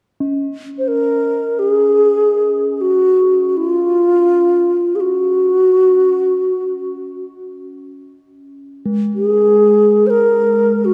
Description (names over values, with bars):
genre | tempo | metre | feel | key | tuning
world meditative, free-time meditation music | free time | none | none | unclear | A4 = 442 Hz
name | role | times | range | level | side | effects
quartz singing bowl | texture | 0.2-10.9 s | Ab3 to Db4 | -25 LUFS | equal | none
low xiao | melody | 0.8-10.9 s | F4 to C5 | -15 LUFS | equal | none
room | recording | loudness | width
wet church reverb, RT60 3.4 s | dark, warm production | -14 LUFS | mono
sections
0.0-10.9 A section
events
none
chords
none